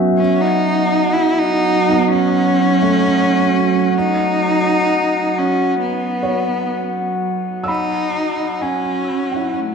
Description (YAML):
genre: ambient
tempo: 64 BPM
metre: 4/4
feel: straight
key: F# dorian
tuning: A4 = 438 Hz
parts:
  - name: felt-muted upright piano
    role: arpeggios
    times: 0.0-9.7 s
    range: A3 to E6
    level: -25 LUFS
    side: equal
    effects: tape echo
  - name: analog drone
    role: drone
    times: 0.0-9.7 s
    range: F#3 to F#4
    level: -20 LUFS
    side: right 3 dB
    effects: chorus
  - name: glass harmonica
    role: texture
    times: 0.0-9.7 s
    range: E5 to F#5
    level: -22 LUFS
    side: left 6 dB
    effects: stereo widening
  - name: rich cello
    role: melody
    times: 0.2-9.7 s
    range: A3 to E4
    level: -18 LUFS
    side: right 1 dB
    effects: tape echo
room: wet scoring stage reverb, RT60 2.1 s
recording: dark, warm production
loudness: -14 LUFS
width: side -6 dB against mid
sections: 0.0-9.7 A section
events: fade-out 5.2-9.7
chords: 0.2 F#madd9; 3.9 Badd9/F#; 7.7 A (rootless)